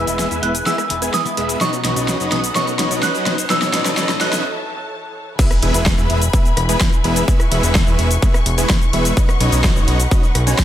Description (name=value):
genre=EDM, festival progressive house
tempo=127 BPM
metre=4/4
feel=straight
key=E major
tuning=A4 = 440 Hz
part: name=soft synth bell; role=melody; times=0.0-4.4 s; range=C#6 to F#6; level=-23 LUFS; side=right 2 dB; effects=chorus, dub echo
part: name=clean electric guitar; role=accompaniment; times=0.0-4.4 s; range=B2 to E4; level=-27 LUFS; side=left 5 dB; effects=sidechain pumping
part: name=warm studio string section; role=sustained chords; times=0.0-10.6 s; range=E3 to C#6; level=-27 LUFS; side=left 3 dB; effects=sidechain pumping, low-pass filter
part: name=big supersaw lead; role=riff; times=0.0-10.6 s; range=F#3 to G#5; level=-22 LUFS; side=right 1 dB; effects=sidechain pumping, low-pass filter, dub echo
part: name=fat analog bass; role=bass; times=0.0-10.5 s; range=E1 to A2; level=-20 LUFS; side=equal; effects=sidechain pumping
part: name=riser and impact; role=sound effects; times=0.6-7.3 s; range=none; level=-30 LUFS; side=equal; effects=none
part: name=big-room dance drum kit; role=drums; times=0.1-10.6 s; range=crash cymbal, hi-hat, rim click, shaker, snare drum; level=-22 LUFS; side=equal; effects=overdrive
part: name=electronic kick drum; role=drums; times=5.4-10.6 s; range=none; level=-15 LUFS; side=equal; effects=overdrive
room=light reverb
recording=high-pass filter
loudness=-14 LUFS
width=side -11 dB against mid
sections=0.0-5.4 A section; 5.4-10.6 B section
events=build-up 0.0-5.4; drum fill 0.0-4.4; filter sweep on supersaw synth 0.0-5.4; break 4.4-5.4; drop 5.4-10.6; impact 5.4-7.3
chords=0.0 E; 1.6 Badd9; 3.5 A; 5.4 E; 9.2 Badd9